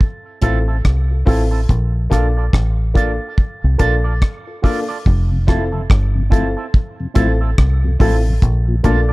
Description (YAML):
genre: roots reggae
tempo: 71 BPM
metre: 4/4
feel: swing 62% on 16ths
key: F major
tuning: A4 = 440 Hz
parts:
  - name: deep reggae drum kit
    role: drums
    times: 0.0-9.1 s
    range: hi-hat, kick drum, rim click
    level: -14 LUFS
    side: equal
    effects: none
  - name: electric guitar with an envelope filter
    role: accompaniment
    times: 0.4-9.1 s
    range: C4 to D5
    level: -26 LUFS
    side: right 5 dB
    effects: tape echo
  - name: warm upright piano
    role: stabs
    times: 0.4-9.0 s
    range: Bb3 to A4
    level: -23 LUFS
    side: left 2 dB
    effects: none
  - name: deep dub fingered electric bass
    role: bass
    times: 0.4-9.1 s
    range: F1 to C2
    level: -16 LUFS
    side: equal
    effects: none
  - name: mellow tonewheel organ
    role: accompaniment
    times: 5.3-9.1 s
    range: F2 to E4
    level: -24 LUFS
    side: left 2 dB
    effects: chorus vibrato, slow rotary speaker
room: small room ambience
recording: dark, warm production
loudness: -14 LUFS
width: side -21 dB against mid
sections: 0.0-5.1 A section; 5.1-9.1 B section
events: none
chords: 0.0 Fmaj7; 1.7 Bbmaj7; 5.1 Fmaj7; 8.4 Bbmaj7